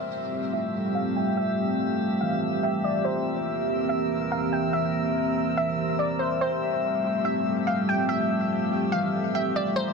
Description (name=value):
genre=hip hop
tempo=143 BPM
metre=4/4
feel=half-time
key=F major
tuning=A4 = 440 Hz
part: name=glassy wavetable pluck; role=melody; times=0.0-9.9 s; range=C5 to G5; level=-29 LUFS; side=right 1 dB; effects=chorus, low-pass filter, ping-pong delay
part: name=dark analog pad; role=sustained chords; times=0.0-9.9 s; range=E3 to G4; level=-27 LUFS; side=right 1 dB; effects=chorus, low-pass filter
part: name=concert harp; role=arpeggios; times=0.0-9.9 s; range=E3 to E6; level=-31 LUFS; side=left 5 dB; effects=low-pass filter, ping-pong delay
part: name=drifting glass-harmonics texture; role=texture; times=0.0-9.9 s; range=F3 to E6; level=-33 LUFS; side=right 1 dB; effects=chorus, built-in reverb
room=light reverb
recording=dense, heavily limited modern master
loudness=-23 LUFS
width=side -4 dB against mid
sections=0.0-9.9 A section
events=filter sweep 0.0-9.9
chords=0.0 Fmaj9; 3.1 C7; 6.4 Fmaj9